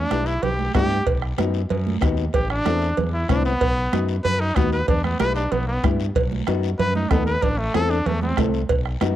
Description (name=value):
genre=latin, cumbia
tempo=189 BPM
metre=4/4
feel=straight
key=E harmonic minor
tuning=A4 = 445 Hz
part: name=clear trumpet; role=melody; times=0.0-8.4 s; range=A3 to B4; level=-24 LUFS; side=equal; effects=cassette tape
part: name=modern bright fingered electric bass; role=bass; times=0.0-9.2 s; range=A1 to G2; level=-24 LUFS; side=equal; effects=none
part: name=flamenco guitar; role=accompaniment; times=0.1-9.2 s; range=B3 to B4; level=-27 LUFS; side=left 8 dB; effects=none
part: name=bombo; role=percussion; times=0.1-9.2 s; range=none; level=-24 LUFS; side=left 1 dB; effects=none
part: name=congas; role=percussion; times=0.1-9.2 s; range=none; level=-28 LUFS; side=right 8 dB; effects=none
part: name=cowbell and timbales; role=percussion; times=0.1-9.2 s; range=none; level=-27 LUFS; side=right 6 dB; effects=none
part: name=guiro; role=percussion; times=0.1-9.2 s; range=none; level=-42 LUFS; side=left 9 dB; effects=none
room=light reverb, small room reverb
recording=home recording on cassette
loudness=-19 LUFS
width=side -12 dB against mid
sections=0.0-9.2 A section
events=trumpet solo 0.0-9.2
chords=0.0 Em; 1.1 B; 2.3 Am; 3.6 B; 4.9 Em; 6.2 B7; 7.4 Am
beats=0.11 0.43 0.75 | 1.07 1.38 1.70 2.02 | 2.34 2.66 2.98 3.29 | 3.61 3.93 4.25 4.57 | 4.88 5.20 5.52 5.84 | 6.16 6.47 6.79 7.11 | 7.43 7.75 8.06 8.38 | 8.70 9.02